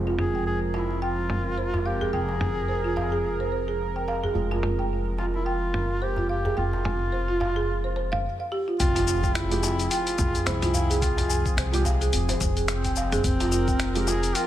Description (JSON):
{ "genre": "organic downtempo", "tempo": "108 BPM", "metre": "4/4", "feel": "swing 57% on 16ths", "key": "F minor", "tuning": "A4 = 440 Hz", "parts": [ { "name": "felt-muted upright piano", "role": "accompaniment", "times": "0.0-14.1 s", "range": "F3 to G4", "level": "-36 LUFS", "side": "right 4 dB", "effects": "sidechain pumping, tape echo" }, { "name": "warm analog pad", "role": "sustained chords", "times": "0.0-14.5 s", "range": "F3 to Bb4", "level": "-34 LUFS", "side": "equal", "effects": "chorus, sidechain pumping" }, { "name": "upright bass", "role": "bass", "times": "0.0-14.3 s", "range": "F1 to C2", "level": "-28 LUFS", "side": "equal", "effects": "sidechain pumping" }, { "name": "quartz singing bowl", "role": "texture", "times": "0.0-14.5 s", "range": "Ab3 to G5", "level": "-42 LUFS", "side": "left 4 dB", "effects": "none" }, { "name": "folk marimba with soft mallets", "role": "arpeggios", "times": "0.1-14.5 s", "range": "F4 to Ab5", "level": "-30 LUFS", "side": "right 2 dB", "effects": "tape echo" }, { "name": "darbuka", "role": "percussion", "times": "0.1-14.2 s", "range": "none", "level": "-34 LUFS", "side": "right 1 dB", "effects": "none" }, { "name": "warm duduk", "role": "melody", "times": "0.2-14.5 s", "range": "C4 to Ab4", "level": "-30 LUFS", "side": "equal", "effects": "tape echo" }, { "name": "dusty soul sampler-style drum kit", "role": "drums", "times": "0.2-14.5 s", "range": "finger snaps, hi-hat, shaker, toms", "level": "-30 LUFS", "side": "left 1 dB", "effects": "low-pass filter on toms, small room ambience, low-pass filter on hats, low-pass filter on perc, low-pass filter on snare" }, { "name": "electronic kick drum", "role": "drums", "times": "8.8-13.8 s", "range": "none", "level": "-28 LUFS", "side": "equal", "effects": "small room ambience" }, { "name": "impact", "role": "sound effects", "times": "8.8-11.0 s", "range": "none", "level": "-34 LUFS", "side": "left 1 dB", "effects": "none" } ], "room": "light reverb, small room reverb", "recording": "none", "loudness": "-23 LUFS", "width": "side -12 dB against mid", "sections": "0.0-8.8 A section; 8.8-14.5 B section", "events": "impact 8.8-11.0", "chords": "0.0 Fmadd9", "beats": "0.47 1.02 1.58 | 2.13 2.69 3.24 3.80 | 4.35 4.91 5.46 6.02 | 6.58 7.13 7.69 8.24 | 8.80 9.35 9.91 10.46 | 11.02 11.58 12.13 12.69 | 13.24 13.80 14.35" }